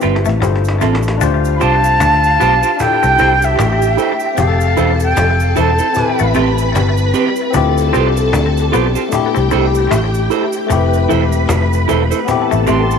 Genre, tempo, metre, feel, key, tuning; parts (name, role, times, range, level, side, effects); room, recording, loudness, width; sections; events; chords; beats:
lovers rock reggae; 76 BPM; 4/4; swing 58% on 16ths; D dorian; A4 = 437 Hz
breathy silver concert flute; melody; 0.0-6.3, 12.7-13.0 s; E5 to C6; -15 LUFS; right 1 dB; tape echo
barky tine electric piano; accompaniment; 0.0-13.0 s; A3 to C5; -19 LUFS; left 11 dB; tape echo
twangy electric guitar; riff; 0.0-12.9 s; E3 to D4; -23 LUFS; left 11 dB; wide subtle chorus, tape echo
clean electric guitar; stabs; 0.0-12.8 s; C4 to C5; -20 LUFS; right 12 dB
vintage muted fingered electric bass; bass; 0.0-13.0 s; E1 to D2; -16 LUFS; equal
cajon; drums; 0.0-13.0 s; -23 LUFS; right 1 dB
cabasa; percussion; 0.0-13.0 s; -34 LUFS; right 15 dB
phased string machine; second line; 1.2-13.0 s; F4 to B5; -20 LUFS; right 1 dB; ensemble chorus, phaser
light reverb, studio reverb; 1960s-style stereo with parts hard left and right; -11 LUFS; side -6 dB against mid
0.0-1.2 A section; 1.2-13.0 B section
drum fill 0.0-1.2
0.4 G9sus4; 1.2 Dm7; 2.8 C6; 4.4 Fmaj7; 6.0 Am9; 7.5 Dm11; 9.1 C6; 10.7 Fmaj7; 12.3 Am9
0.42 | 1.21 2.00 2.79 3.58 | 4.38 5.17 5.96 6.75 | 7.54 8.33 9.12 9.91 | 10.70 11.49 12.28